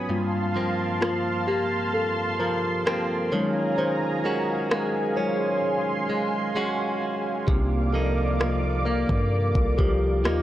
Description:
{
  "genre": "contemporary R&B",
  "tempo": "65 BPM",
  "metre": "4/4",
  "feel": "straight",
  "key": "unclear",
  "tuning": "A4 = 440 Hz",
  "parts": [
    { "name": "mellow tine electric piano", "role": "accompaniment", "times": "0.0-10.4 s", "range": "Gb3 to Db5", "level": "-28 LUFS", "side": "left 2 dB", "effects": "phaser" },
    { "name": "lush unison pad", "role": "sustained chords", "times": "0.0-10.4 s", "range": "Bb3 to D6", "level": "-28 LUFS", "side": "right 1 dB", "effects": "chorus" },
    { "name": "direct-recorded clean electric guitar", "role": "arpeggios", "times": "0.0-10.4 s", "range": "G2 to Gb4", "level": "-28 LUFS", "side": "right 2 dB", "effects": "tape echo" },
    { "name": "smooth R&B drum kit", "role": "drums", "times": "1.0-10.4 s", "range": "kick drum, rim click", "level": "-25 LUFS", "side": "equal", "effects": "overdrive" },
    { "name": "long sustained 808-style bass", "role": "bass", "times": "7.5-10.4 s", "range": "C2 to G2", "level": "-25 LUFS", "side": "equal", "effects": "none" }
  ],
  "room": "little or no reverb",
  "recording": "dry, gritty hardware recording, lossy compression artefacts",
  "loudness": "-22 LUFS",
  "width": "side -13 dB against mid",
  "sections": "0.0-10.4 A section",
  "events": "break 0.0-7.5; tine electric piano solo 0.0-10.4; drums muted 5.6-7.5",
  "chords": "0.1 Gm11; 3.3 Ebm11; 7.5 Cm11"
}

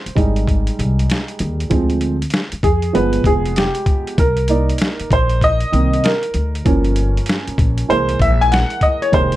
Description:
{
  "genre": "hip hop, jazz-hop",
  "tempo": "97 BPM",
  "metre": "4/4",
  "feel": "swing 64% on 16ths",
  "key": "C minor",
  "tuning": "A4 = 440 Hz",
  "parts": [
    { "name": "warm upright piano", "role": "accompaniment", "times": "0.0-9.4 s", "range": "Eb3 to G#5", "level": "-18 LUFS", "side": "right 1 dB", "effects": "none" },
    { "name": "upright bass", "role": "bass", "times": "0.1-9.4 s", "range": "F1 to F2", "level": "-18 LUFS", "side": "equal", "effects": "none" },
    { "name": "boom bap sampler-style drum kit", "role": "drums", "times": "0.1-9.4 s", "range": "hi-hat, kick drum, snare drum", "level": "-19 LUFS", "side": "equal", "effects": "none" }
  ],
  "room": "light reverb",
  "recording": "dark, warm production",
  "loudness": "-14 LUFS",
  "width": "side -15 dB against mid",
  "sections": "0.0-9.4 A section",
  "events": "upright piano solo 0.0-9.4",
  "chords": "0.0 Fm9 (rootless); 1.7 Dm7b5; 2.9 G7b9; 4.2 Cm7; 6.7 Gm7b5; 7.9 Caug7"
}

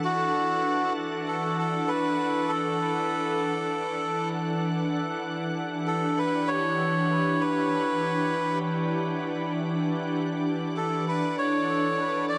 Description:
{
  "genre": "ambient dub",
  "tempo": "98 BPM",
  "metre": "4/4",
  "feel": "straight",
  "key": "E dorian",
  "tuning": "A4 = 440 Hz",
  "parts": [
    { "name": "melodica", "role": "melody", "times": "0.0-12.4 s", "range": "F#4 to D5", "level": "-30 LUFS", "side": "equal", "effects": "dub echo" },
    { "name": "soft additive organ-like pad", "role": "sustained chords", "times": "0.0-12.4 s", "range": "E3 to F#5", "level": "-30 LUFS", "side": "equal", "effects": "ensemble chorus, built-in reverb" }
  ],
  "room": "wet lush hall reverb, RT60 1.9 s, small room reverb",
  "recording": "dark, warm production, nothing above 10.4 kHz",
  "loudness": "-27 LUFS",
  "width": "mono",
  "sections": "0.0-5.0 A section; 5.0-12.4 B section",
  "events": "none",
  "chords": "0.0 D/E; 5.0 Em9"
}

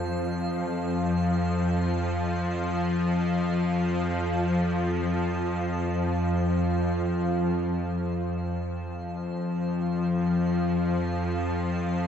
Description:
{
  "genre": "dark ambient drone",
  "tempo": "free time",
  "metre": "none",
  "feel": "none",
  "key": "unclear",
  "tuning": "A4 = 441 Hz",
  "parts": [
    { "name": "dark detuned synth bell", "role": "arpeggios", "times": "0.0-7.4 s", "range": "none", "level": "barely audible", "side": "none", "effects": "none" },
    { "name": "bowed-like drone", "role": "drone", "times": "0.0-12.1 s", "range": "F2 to F3", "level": "-24 LUFS", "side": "left 1 dB", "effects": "built-in reverb" },
    { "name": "icy glass pad", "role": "texture", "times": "0.0-12.1 s", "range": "C5", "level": "-43 LUFS", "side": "left 2 dB", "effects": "chorus, built-in reverb" }
  ],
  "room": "wet huge ambient reverb, RT60 7.5 s",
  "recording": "cassette tape, studio reverb",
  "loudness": "-24 LUFS",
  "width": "side -8 dB against mid",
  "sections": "0.0-7.4 A section; 7.4-12.1 B section",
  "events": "fade-out on ambient pad 0.0-7.4",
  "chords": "0.0 Fm; 7.4 F5"
}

